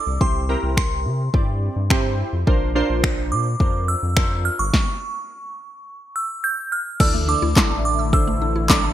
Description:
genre	dance-pop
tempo	106 BPM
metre	4/4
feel	straight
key	D minor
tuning	A4 = 444 Hz
part	glassy synth bell	melody	0.0-8.8 s	C6 to G6	-25 LUFS	right 2 dB	chorus, ping-pong delay
part	glassy digital keys	accompaniment	0.0-8.9 s	C4 to D5	-26 LUFS	right 3 dB	chorus, sidechain pumping
part	round analog bass	bass	0.1-8.9 s	G1 to C3	-23 LUFS	equal	sidechain pumping
part	deep house drum kit	drums	0.2-8.8 s	crash cymbal, finger snaps, handclaps, kick drum, snare drum	-18 LUFS	equal	overdrive, gated reverb
part	warm analog pad	sustained chords	7.0-8.9 s	D3 to E4	-28 LUFS	left 2 dB	chorus, tremolo, sidechain pumping
part	mallet-like synth pluck	arpeggios	7.0-8.9 s	E3 to E6	-30 LUFS	left 3 dB	chorus, sidechain pumping, ping-pong delay
room	light reverb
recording	bright 1980s-style digital production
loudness	-18 LUFS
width	side -12 dB against mid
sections	0.0-7.0 A section; 7.0-8.9 B section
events	stop 4.7-7.0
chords	0.2 C; 2.5 Bbadd9; 4.7 N.C.; 7.0 Dsus2

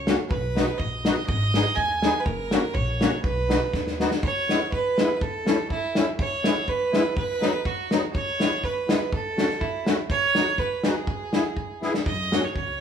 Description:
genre	alpine folk, alpine dance band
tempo	123 BPM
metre	2/4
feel	straight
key	B major, E major from 4.2 s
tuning	A4 = 440 Hz
part	bright fiddle	melody	0.0-12.8 s	E4 to G#5	-26 LUFS	right 4 dB	none
part	upright bass	bass	0.0-4.1, 12.1-12.8 s	F#1 to F#2	-29 LUFS	equal	none
part	musette accordion	accompaniment	0.1-12.4 s	F#3 to G#4	-29 LUFS	left 2 dB	none
part	loose indie drum kit	drums	0.1-12.7 s	kick drum, snare drum	-25 LUFS	left 1 dB	none
room	moderate large studio reverb, RT60 1.4 s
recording	band playing live in one room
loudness	-22 LUFS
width	side -8 dB against mid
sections	0.0-4.2 A section; 4.2-12.8 B section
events	drum fill 3.7-4.2, 11.8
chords	0.3 B; 1.3 G#m; 2.3 F#; 3.2 B; 4.2 E; 5.2 A; 6.2 E; 7.2 B; 8.1 E; 9.1 F#m; 10.1 B; 11.1 E; 12.1 F#

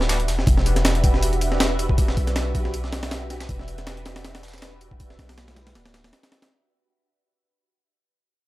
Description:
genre	drum and bass, jungle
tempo	159 BPM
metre	4/4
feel	swing 55% on 16ths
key	E minor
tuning	A4 = 441 Hz
part	warm 808-style bass	bass	0.0-6.1 s	D1 to B1	-24 LUFS	equal	none
part	breakbeat sampler-style drum kit	drums	0.0-6.5 s	hi-hat, kick drum, snare drum	-23 LUFS	equal	studio reverb
part	breakbeat sampler-style drum kit	drums	0.0-6.5 s	hi-hat, snare drum, tambourine	-32 LUFS	equal	high-pass filter on snare, studio reverb, high-pass filter on perc, high-pass filter on hats
part	soft string machine	sustained chords	0.5-5.9 s	D4 to E5	-30 LUFS	right 1 dB	phaser, ensemble chorus, vintage 12-bit sampler grit
room	digital ambience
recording	dry, gritty hardware recording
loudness	-19 LUFS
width	side -17 dB against mid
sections	0.0-6.5 A section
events	fade-out 0.0-6.5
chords	0.0 Em9

